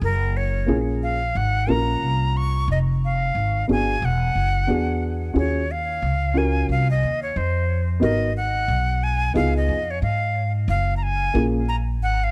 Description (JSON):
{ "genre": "hip hop, jazz-hop", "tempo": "90 BPM", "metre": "4/4", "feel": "swing 60% on 16ths", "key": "unclear", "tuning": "A4 = 441 Hz", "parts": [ { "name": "breathy bright jazz flute", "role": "melody", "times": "0.0-12.3 s", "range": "Bb4 to Db6", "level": "-27 LUFS", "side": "equal", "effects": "plate reverb, analog delay" }, { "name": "upright bass", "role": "bass", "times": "0.0-12.3 s", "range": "E1 to Ab2", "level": "-25 LUFS", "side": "equal", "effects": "none" }, { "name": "dark upright piano", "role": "accompaniment", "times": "0.7-11.6 s", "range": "Bb3 to Bb4", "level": "-26 LUFS", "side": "equal", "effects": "plate reverb" } ], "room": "light reverb", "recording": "dark, warm production", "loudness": "-22 LUFS", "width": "mono", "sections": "0.0-12.3 A section", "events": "none", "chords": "0.0 Gbmaj7; 2.7 Fm; 4.0 E9; 5.3 Ebm9; 8.0 Abm7; 9.3 Db7; 10.7 Gbmaj7" }